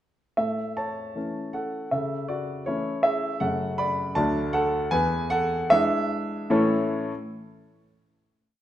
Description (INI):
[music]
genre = classical-period piano sonatina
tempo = 73-80 BPM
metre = 2/4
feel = straight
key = A major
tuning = A4 = 440 Hz
[part]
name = warm grand piano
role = solo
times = 0.4-7.1 s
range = D2 to B5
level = -23 LUFS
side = equal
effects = none
[sound]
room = wet recital hall reverb, RT60 1.5 s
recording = none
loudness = -23 LUFS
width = side -12 dB against mid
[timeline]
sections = 0.4-6.5 A section; 6.5-8.1 final chord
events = slowing down 2.7-6.5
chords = 0.4 A; 1.9 A/C#; 3.4 F#m; 4.2 D; 4.9 E7; 6.5 A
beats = | 0.39 1.16 | 1.91 2.66 | 3.41 4.16 | 4.93 5.71 | 6.52